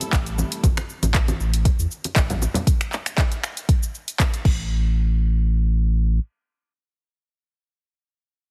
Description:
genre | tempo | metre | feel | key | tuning
afro house | 118 BPM | 4/4 | swing 54% on 16ths | A minor | A4 = 440 Hz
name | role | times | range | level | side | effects
rich studio string section | sustained chords | 0.0-0.6 s | C3 to A4 | -37 LUFS | equal | sidechain pumping
afro-pop drum kit | drums | 0.0-4.6 s | crash cymbal, finger snaps, handclaps, hi-hat, shaker | -29 LUFS | equal | small room reverb
congas | percussion | 0.0-2.6 s | none | -30 LUFS | equal | none
warm sub bass | bass | 0.1-6.2 s | A1 to E2 | -23 LUFS | equal | sidechain pumping
electronic kick drum | drums | 0.1-4.6 s | none | -22 LUFS | equal | small room reverb
room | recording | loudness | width
small room ambience | heavily compressed radio sound | -22 LUFS | mono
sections
0.0-4.7 A section; 4.7-8.5 B section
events
drop 0.0-4.7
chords
0.0 Am7; 0.6 A5; 2.7 N.C.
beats
0.13 | 0.64 1.15 1.65 2.16 | 2.67 3.18 3.69 4.20 | 4.71 5.21 5.72

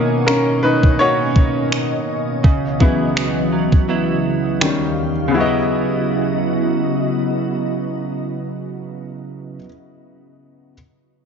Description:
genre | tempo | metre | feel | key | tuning
contemporary R&B | 83 BPM | 4/4 | swing 54% on 16ths | C# dorian | A4 = 442 Hz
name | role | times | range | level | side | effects
clear baby grand piano | accompaniment | 0.0-10.7 s | B2 to D#5 | -21 LUFS | left 4 dB | none
glassy FM pad | sustained chords | 0.0-9.0 s | C#2 to E#5 | -22 LUFS | left 1 dB | ensemble chorus, built-in reverb
direct-recorded clean electric guitar | arpeggios | 0.0-9.8 s | B2 to E4 | -22 LUFS | right 6 dB | analog chorus
gated 80s digital drum machine | drums | 0.3-4.8 s | finger snaps, kick drum | -15 LUFS | equal | none
room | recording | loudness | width
light reverb | nothing above 7.6 kHz | -15 LUFS | side -6 dB against mid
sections
0.0-5.3 A section; 5.3-8.2 B section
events
grand piano solo 0.0-5.3; break 3.9-5.3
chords
0.0 Bmaj9; 2.4 C#m11; 4.6 D#9; 5.3 C#m11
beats
0.27 1.00 1.72 | 2.44 3.17 3.89 4.61 | 5.33 6.06 6.78 7.50

